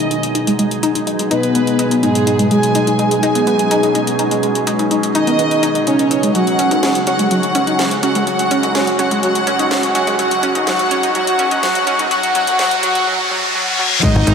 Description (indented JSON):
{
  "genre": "melodic techno",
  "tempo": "125 BPM",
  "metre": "4/4",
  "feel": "straight",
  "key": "unclear",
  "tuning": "A4 = 441 Hz",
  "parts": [
    { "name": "fat analog lead", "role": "melody", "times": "0.0-14.3 s", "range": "G#3 to G#4", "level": "-18 LUFS", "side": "equal", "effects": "lush chorus, vintage 12-bit sampler grit, sidechain pumping, tape echo" },
    { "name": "clear studio violin section", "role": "second line", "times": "0.0-14.3 s", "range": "G#4 to G#5", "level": "-22 LUFS", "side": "left 1 dB", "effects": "sidechain pumping, low-pass filter, ping-pong delay" },
    { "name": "evolving wavetable pad", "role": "sustained chords", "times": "0.0-14.3 s", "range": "B2 to G#4", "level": "-22 LUFS", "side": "right 1 dB", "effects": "chorus, built-in reverb, sidechain pumping" },
    { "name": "analog pluck", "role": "arpeggios", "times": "0.0-14.3 s", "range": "F#3 to D#4", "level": "-19 LUFS", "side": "equal", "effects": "chorus, sidechain pumping, ping-pong delay" },
    { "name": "house drum kit", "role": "drums", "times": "0.1-14.3 s", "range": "crash cymbal, hi-hat, snare drum, toms", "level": "-23 LUFS", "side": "left 1 dB", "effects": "sidechain pumping on hats, high-pass filter on hats, sidechain pumping on toms, high-pass filter on toms, high-pass filter on snare, sidechain pumping on cymbals, high-pass filter on cymbals, high-pass filter on room" },
    { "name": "riser, reverse cymbal and sub drop", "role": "sound effects", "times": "9.2-14.3 s", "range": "none", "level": "-22 LUFS", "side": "equal", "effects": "none" },
    { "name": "electronic kick drum", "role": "drums", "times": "14.0-14.1 s", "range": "none", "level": "-17 LUFS", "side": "equal", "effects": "none" },
    { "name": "plucky analog bass", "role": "bass", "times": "14.2-14.3 s", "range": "G#1", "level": "-13 LUFS", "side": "equal", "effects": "sidechain pumping" }
  ],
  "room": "wet cathedral reverb, RT60 5.8 s",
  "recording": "dreamy mix soaked in reverb, high-pass filter",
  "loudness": "-13 LUFS",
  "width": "side -6 dB against mid",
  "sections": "0.0-14.0 A section",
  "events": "build-up 0.0-14.0; filter sweep on synth pluck 0.0-14.0; filter sweep on analog synth lead 0.0-14.0; filter sweep on violin section 0.0-14.0; filter sweep 0.0-14.0; riser 9.2-14.0; reverse cymbal 13.1-14.0; impact 14.0-14.3",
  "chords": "0.0 G#m7; 6.3 F#sus2"
}